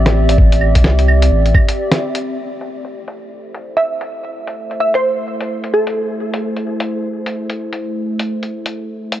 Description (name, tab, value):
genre	future garage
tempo	129 BPM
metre	4/4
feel	swing 61% on 16ths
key	A minor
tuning	A4 = 439 Hz
part	warbly tape-like pad	sustained chords	0.0-9.2 s	A3 to E5	-21 LUFS	equal	chorus, built-in reverb, sidechain pumping
part	warm sub bass	bass	0.0-1.5 s	A1 to C2	-12 LUFS	equal	sidechain pumping
part	lo-fi sampler-style drum kit	drums	0.1-9.2 s	claves, hi-hat, snare drum	-20 LUFS	equal	low-pass filter on hats, low-pass filter on perc, low-pass filter on snare
part	electronic kick drum	drums	0.4-1.7 s	none	-12 LUFS	equal	none
part	glassy wavetable pluck	melody	3.8-6.2 s	A4 to E5	-19 LUFS	right 1 dB	chorus, tape echo
room	light reverb, digital ambience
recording	cassette tape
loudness	-14 LUFS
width	side -12 dB against mid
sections	0.0-2.2 A section; 2.2-9.2 B section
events	break 1.8-2.2; filter sweep on drum 2.2-9.2; filter sweep on ambient pad 2.2-9.2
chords	0.0 Am7